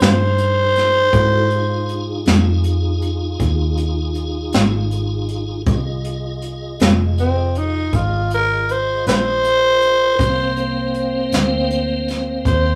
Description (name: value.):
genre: slow blues.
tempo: 53 BPM (dotted quarters).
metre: 12/8.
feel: straight.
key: unclear.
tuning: A4 = 440 Hz.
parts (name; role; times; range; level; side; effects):
growling tenor saxophone; melody; 0.0-12.8 s; C4 to C5; -19 LUFS; equal; none.
tonewheel organ; sustained chords; 0.0-12.8 s; F3 to Eb5; -26 LUFS; equal; slow rotary speaker, chorus vibrato.
vintage muted fingered electric bass; bass; 0.0-12.8 s; F1 to Ab2; -23 LUFS; equal; none.
jazz brush drum kit; drums; 0.0-12.6 s; hi-hat, kick drum, snare drum; -21 LUFS; equal; none.
room: moderate booth ambience, RT60 0.3 s.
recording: rough rehearsal-room recording.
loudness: -18 LUFS.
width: mono.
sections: 0.0-12.8 A section.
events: tenor saxophone solo 0.0-12.8.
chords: 0.0 Fm7; 10.2 C7(no3).